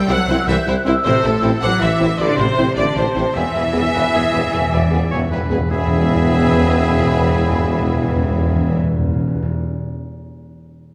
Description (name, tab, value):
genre	cinematic, heroic adventure film score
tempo	104 BPM (dotted quarters)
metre	12/8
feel	straight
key	E mixolydian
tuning	A4 = 440 Hz
part	warm symphonic violin section	melody	0.0-8.8 s	A4 to F#5	-31 LUFS	equal	none
part	hollow large flute ensemble	second line	0.0-8.8 s	G#5 to G6	-28 LUFS	equal	none
part	rich symphonic cello section	bass	0.0-8.8 s	A2 to F#3	-26 LUFS	equal	none
part	warm symphonic violin section	second line	0.1-8.8 s	E4 to C5	-30 LUFS	equal	none
part	rich symphonic viola section	accompaniment	0.1-8.8 s	A4 to F#5	-25 LUFS	equal	none
part	rich symphonic double bass section	bass	0.1-8.8 s	A1 to E2	-26 LUFS	equal	none
part	warm tuba	bass	0.1-8.8 s	E1 to C2	-26 LUFS	equal	none
part	mellow French horn section	sustained chords	0.3-8.8 s	B3 to G#4	-26 LUFS	equal	none
part	timpani	percussion	3.4-9.5 s	E2	-22 LUFS	equal	none
part	clear oboe	second line	3.9-8.8 s	G#4 to E5	-30 LUFS	equal	none
room	wet scoring stage reverb, RT60 2.0 s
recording	none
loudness	-17 LUFS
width	mono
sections	0.0-5.7 A section; 5.7-8.0 B section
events	timpani fill 3.4-5.7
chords	0.0 C; 1.0 Am; 3.4 E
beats	0.47 | 1.05 1.62 2.20 2.77 | 3.36 3.95 4.54 5.12 | 5.71 6.29 6.86 7.44